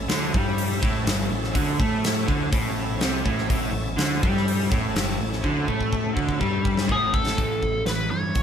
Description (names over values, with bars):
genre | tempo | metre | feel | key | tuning
classic rock | 124 BPM | 4/4 | straight | A major | A4 = 438 Hz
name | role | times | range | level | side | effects
bright tonewheel organ | sustained chords | 0.0-8.4 s | C#4 to A4 | -34 LUFS | right 1 dB | overdrive, chorus vibrato, slow rotary speaker
crunchy overdriven guitar | riff | 0.0-8.4 s | G2 to A3 | -26 LUFS | right 1 dB | none
growling picked electric bass | bass | 0.0-8.4 s | G1 to A2 | -28 LUFS | equal | overdrive
huge arena drum kit | drums | 0.1-8.4 s | hi-hat, kick drum, snare drum | -25 LUFS | equal | none
biting lead guitar | melody | 6.9-8.4 s | G#4 to C#5 | -25 LUFS | left 1 dB | wah, overdrive
room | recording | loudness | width
moderate studio reverb, RT60 0.5 s | band playing live in one room | -21 LUFS | side -8 dB against mid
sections
0.0-7.4 A section; 7.4-8.4 B section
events
drum fill 5.4-7.4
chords
0.0 A